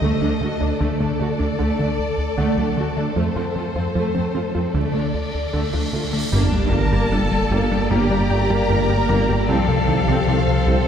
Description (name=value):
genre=cinematic, hybrid orchestral and electronic film score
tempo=76 BPM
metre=4/4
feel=straight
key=G minor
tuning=A4 = 441 Hz
part: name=warm symphonic violin section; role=second line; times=0.0-10.9 s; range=G4 to Eb5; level=-27 LUFS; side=left 2 dB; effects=none
part: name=rich symphonic viola section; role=accompaniment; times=0.0-10.9 s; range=Eb3 to F#4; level=-27 LUFS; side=right 2 dB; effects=low-pass filter
part: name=analog pluck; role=arpeggios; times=0.0-10.8 s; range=C3 to G4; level=-27 LUFS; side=right 3 dB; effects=chorus, low-pass filter, ping-pong delay
part: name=rubbery square bass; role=riff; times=0.0-10.8 s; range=C2 to G3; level=-24 LUFS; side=left 2 dB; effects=low-pass filter
part: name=rich symphonic cello section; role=bass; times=0.0-10.9 s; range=D2 to Bb4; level=-26 LUFS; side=right 2 dB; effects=none
part: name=warm grand piano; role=texture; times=0.0-10.9 s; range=C5 to Bb6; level=-36 LUFS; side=left 4 dB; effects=none
part: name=cymbal swell and sub drop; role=sound effects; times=5.2-9.5 s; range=none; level=-26 LUFS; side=equal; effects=none
part: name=dark studio violin section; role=melody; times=6.3-10.9 s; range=F5 to Bb5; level=-27 LUFS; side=left 2 dB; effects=low-pass filter
part: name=dark French horn section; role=sustained chords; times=6.3-10.9 s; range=F3 to Bb3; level=-26 LUFS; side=left 4 dB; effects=low-pass filter
part: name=rich symphonic double bass section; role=bass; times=6.3-10.8 s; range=G1 to C2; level=-28 LUFS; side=right 3 dB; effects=none
part: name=warm sub bass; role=bass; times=6.3-10.9 s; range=G1 to C2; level=-25 LUFS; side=equal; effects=none
part: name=warm tuba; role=bass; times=6.3-10.8 s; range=G1 to C2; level=-26 LUFS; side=right 2 dB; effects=none
room=wet scoring stage reverb, RT60 2.0 s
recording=heard from further back in the room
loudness=-18 LUFS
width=side -8 dB against mid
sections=0.0-6.3 A section; 6.3-10.9 B section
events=build-up 0.0-6.3; cymbal swell 5.2-6.3; impact 6.3-9.5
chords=0.0 D; 3.2 F; 4.8 Dm; 6.3 Gmadd9; 9.5 Cm